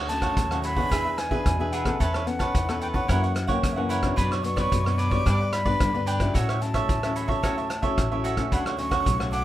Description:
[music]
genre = samba and choro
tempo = 110 BPM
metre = 4/4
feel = straight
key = unclear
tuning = A4 = 440 Hz
[part]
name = cavaquinho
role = accompaniment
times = 0.0-9.4 s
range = D4 to A5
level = -29 LUFS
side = right 4 dB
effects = none
[part]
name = nylon-string guitar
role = accompaniment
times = 0.0-9.4 s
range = F#2 to A4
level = -30 LUFS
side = left 4 dB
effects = none
[part]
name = upright bass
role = bass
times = 0.0-9.4 s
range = A1 to A3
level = -28 LUFS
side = equal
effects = none
[part]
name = breathy concert flute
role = melody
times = 0.1-9.4 s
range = E5 to D6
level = -30 LUFS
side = right 1 dB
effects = none
[part]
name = vintage drum kit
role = drums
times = 0.1-9.4 s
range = hi-hat, kick drum, rim click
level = -28 LUFS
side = equal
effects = none
[sound]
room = small room ambience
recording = rough home demo mix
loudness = -22 LUFS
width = side -13 dB against mid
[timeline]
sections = 0.0-9.4 A section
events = none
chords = 0.0 Dmaj7; 0.9 E7; 2.0 Aadd9/E; 3.1 F#7; 4.2 Bmadd9/F#; 5.3 G; 6.4 A6; 8.5 Dmaj7

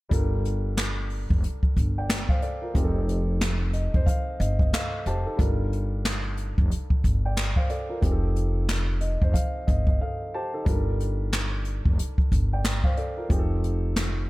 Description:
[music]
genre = hip hop, boom-bap hip-hop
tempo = 91 BPM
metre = 4/4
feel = swing 61% on 16ths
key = G minor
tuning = A4 = 440 Hz
[part]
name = dark grand piano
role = accompaniment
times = 0.1-14.3 s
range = F3 to A5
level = -32 LUFS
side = equal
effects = cassette tape, high-pass filter, low-pass filter
[part]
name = upright bass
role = bass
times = 0.1-14.3 s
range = F1 to G1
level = -26 LUFS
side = equal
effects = none
[part]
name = jazz brush drum kit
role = drums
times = 0.1-14.2 s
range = handclaps, hi-hat, kick drum, snare drum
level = -24 LUFS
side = equal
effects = none
[sound]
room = studio reverb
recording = none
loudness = -23 LUFS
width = side -20 dB against mid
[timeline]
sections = 0.1-14.3 A section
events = grand piano fill 3.4-5.4; break 10.0-10.7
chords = 0.1 Gm9; 2.8 F7; 5.4 Gm9; 8.0 F7; 10.7 Gm9; 13.3 F7

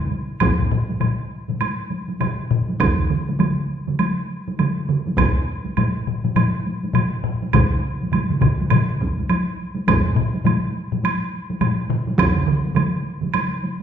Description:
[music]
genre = japanese traditional, taiko drum ensemble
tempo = 102 BPM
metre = 4/4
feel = swing 60% on 16ths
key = none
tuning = none
[part]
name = taiko ensemble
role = percussion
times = 0.0-13.8 s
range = none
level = -24 LUFS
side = equal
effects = none
[part]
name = taiko ensemble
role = percussion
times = 0.4-12.1 s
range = none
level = -22 LUFS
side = left 4 dB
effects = none
[part]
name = taiko ensemble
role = percussion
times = 0.4-12.3 s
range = none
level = -22 LUFS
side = right 1 dB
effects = none
[part]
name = woodblock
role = percussion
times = 0.4-13.5 s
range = none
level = -27 LUFS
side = right 5 dB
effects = none
[part]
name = solo taiko drums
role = percussion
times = 2.8-13.3 s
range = none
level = -23 LUFS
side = right 4 dB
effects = none
[sound]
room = wet recital hall reverb, RT60 1.4 s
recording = recorded in a church or concert hall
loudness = -18 LUFS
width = side -8 dB against mid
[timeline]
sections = 0.4-13.8 A section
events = speeding up 0.0-13.8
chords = none

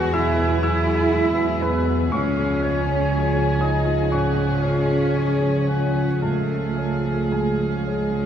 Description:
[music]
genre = cinematic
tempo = 55-61 BPM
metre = 4/4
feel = rubato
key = unclear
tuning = A4 = 445 Hz
[part]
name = dark studio violin section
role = melody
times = 0.0-8.3 s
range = G#4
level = -28 LUFS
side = left 2 dB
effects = none
[part]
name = dark studio violin section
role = second line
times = 0.0-8.3 s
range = G#3 to F#4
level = -34 LUFS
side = left 1 dB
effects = none
[part]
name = hollow concert flute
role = second line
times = 0.0-8.3 s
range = G#4 to F#5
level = -30 LUFS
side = equal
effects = none
[part]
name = dark grand piano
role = accompaniment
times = 0.0-8.3 s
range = C#2 to F#6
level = -28 LUFS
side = equal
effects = none
[part]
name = warm chamber viola section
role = accompaniment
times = 0.0-8.3 s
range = E#3 to F#3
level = -31 LUFS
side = equal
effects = none
[part]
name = mellow French horn section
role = sustained chords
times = 0.0-8.3 s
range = G#3 to F#4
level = -28 LUFS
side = left 2 dB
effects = none
[part]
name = dark studio double bass section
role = bass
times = 0.0-8.3 s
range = C#2 to E2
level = -24 LUFS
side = right 2 dB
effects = none
[part]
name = warm studio cello section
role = bass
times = 0.0-8.3 s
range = G#3 to F#4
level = -28 LUFS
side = right 2 dB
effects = none
[part]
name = clear oboe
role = second line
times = 0.2-8.3 s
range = E5 to G#5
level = -32 LUFS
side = equal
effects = none
[sound]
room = wet concert hall reverb, RT60 2.3 s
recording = heard from further back in the room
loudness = -19 LUFS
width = side -9 dB against mid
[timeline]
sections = 0.0-8.3 A section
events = none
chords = 0.0 Eadd9; 2.1 C#

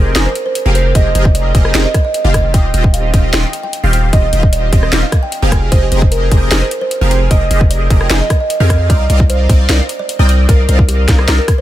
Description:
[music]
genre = future bass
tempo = 151 BPM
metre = 4/4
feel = half-time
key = F dorian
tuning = A4 = 440 Hz
[part]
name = supersaw stab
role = riff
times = 0.0-11.4 s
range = Eb3 to G5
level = -19 LUFS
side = equal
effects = phaser, ensemble chorus, sidechain pumping
[part]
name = long sustained 808-style bass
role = bass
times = 0.0-11.4 s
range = Eb1 to F2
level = -13 LUFS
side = equal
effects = sidechain pumping
[part]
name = trap drum kit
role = drums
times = 0.2-11.6 s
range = hi-hat, rim click, snare drum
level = -18 LUFS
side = left 1 dB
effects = none
[part]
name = kalimba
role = melody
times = 0.3-11.6 s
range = G4 to Ab5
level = -19 LUFS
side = right 3 dB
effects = sidechain pumping, dub echo
[part]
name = electronic kick drum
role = drums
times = 1.0-11.6 s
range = none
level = -11 LUFS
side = equal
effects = none
[sound]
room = little or no reverb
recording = none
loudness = -10 LUFS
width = side -14 dB against mid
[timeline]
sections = 0.0-11.6 A section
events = none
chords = 0.0 Fm11; 2.3 Eb6; 5.5 Fm11; 8.9 Cm11

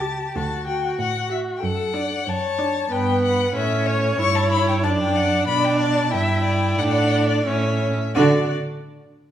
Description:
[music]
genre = quick classical-period movement for string quartet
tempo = 85-94 BPM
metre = 2/4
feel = straight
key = D major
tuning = A4 = 440 Hz
[part]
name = rich violin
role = melody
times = 0.0-8.5 s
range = C#5 to C#6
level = -25 LUFS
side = left 7 dB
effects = none
[part]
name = rich violin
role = second line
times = 0.0-8.5 s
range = F#4 to E5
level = -25 LUFS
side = left 2 dB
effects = none
[part]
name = clear viola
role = accompaniment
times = 0.0-8.5 s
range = B3 to G4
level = -24 LUFS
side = right 2 dB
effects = none
[part]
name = rich cello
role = bass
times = 0.0-8.5 s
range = C#2 to D3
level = -24 LUFS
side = right 3 dB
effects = none
[sound]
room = wet recital hall reverb, RT60 1.4 s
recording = none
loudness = -18 LUFS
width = side -10 dB against mid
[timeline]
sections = 0.0-8.2 A section; 8.2-9.3 B section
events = none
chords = 0.3 D; 1.6 D/F#; 2.9 Gmaj7; 3.6 A; 4.2 A9/G; 4.8 D/F#; 5.5 Bm; 6.1 Em/G; 6.8 D/A; 7.5 A; 8.2 D

